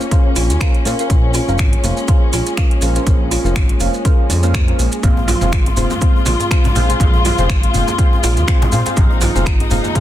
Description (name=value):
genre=afro house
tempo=122 BPM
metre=4/4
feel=swing 55% on 16ths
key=Bb minor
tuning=A4 = 439 Hz
part: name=dark studio string section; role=sustained chords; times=0.0-10.0 s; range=Ab3 to F4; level=-23 LUFS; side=left 4 dB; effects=sidechain pumping
part: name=maracas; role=percussion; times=0.0-10.0 s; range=none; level=-28 LUFS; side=right 2 dB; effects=none
part: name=downlifter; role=sound effects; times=0.0-1.1 s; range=none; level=barely audible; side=none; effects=none
part: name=kalimba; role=arpeggios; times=0.1-10.0 s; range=Bb3 to Ab4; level=-24 LUFS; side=right 4 dB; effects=sidechain pumping, tape echo
part: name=deep mellow chord stab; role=stabs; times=0.1-10.0 s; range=C4 to F5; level=-24 LUFS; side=left 1 dB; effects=chorus, phaser, sidechain pumping, tape echo
part: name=electronic kick drum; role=drums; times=0.1-10.0 s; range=none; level=-14 LUFS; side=equal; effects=none
part: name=house drum kit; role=drums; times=0.1-10.0 s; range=finger snaps, hi-hat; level=-25 LUFS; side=right 2 dB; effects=soft clipping on snare
part: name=smooth gliding synth bass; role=bass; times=0.4-9.8 s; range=F1 to Bb2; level=-18 LUFS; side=equal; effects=tube saturation, sidechain pumping
part: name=congas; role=percussion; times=5.0-9.9 s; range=none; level=-24 LUFS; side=right 3 dB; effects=none
part: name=djembe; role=percussion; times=5.2-9.9 s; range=none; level=-26 LUFS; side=left 3 dB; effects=none
room=studio reverb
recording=dense, heavily limited modern master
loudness=-12 LUFS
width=side -12 dB against mid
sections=0.0-10.0 A section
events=none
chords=0.0 Bbmadd9; 5.0 Fm